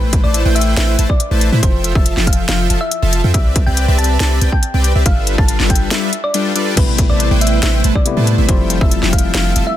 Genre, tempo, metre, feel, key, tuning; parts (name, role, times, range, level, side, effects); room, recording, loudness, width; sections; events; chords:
future bass; 140 BPM; 4/4; half-time; A minor; A4 = 440 Hz
thumb-piano-like synth pluck; melody; 0.0-9.8 s; B4 to A5; -23 LUFS; left 1 dB; chorus, sidechain pumping, ping-pong delay
big bright polysynth; riff; 0.0-9.6 s; F3 to A5; -19 LUFS; equal; chorus, sidechain pumping
warm 808-style bass; bass; 0.0-9.6 s; F1 to A2; -15 LUFS; equal; tube saturation, sidechain pumping
electronic kick drum; drums; 0.1-9.2 s; -14 LUFS; equal
trap drum kit; drums; 0.1-9.6 s; crash cymbal, hi-hat, snare drum; -19 LUFS; left 1 dB
tine electric piano; accompaniment; 6.8-9.8 s; C3 to E4; -21 LUFS; left 6 dB; sidechain pumping
little or no reverb; dense, heavily limited modern master; -12 LUFS; side -12 dB against mid
0.0-9.8 A section
break 5.9-6.8
0.0 Am9; 1.6 Fmaj7; 3.3 Cmaj7; 5.1 G13; 6.8 Am9; 8.5 Fmaj7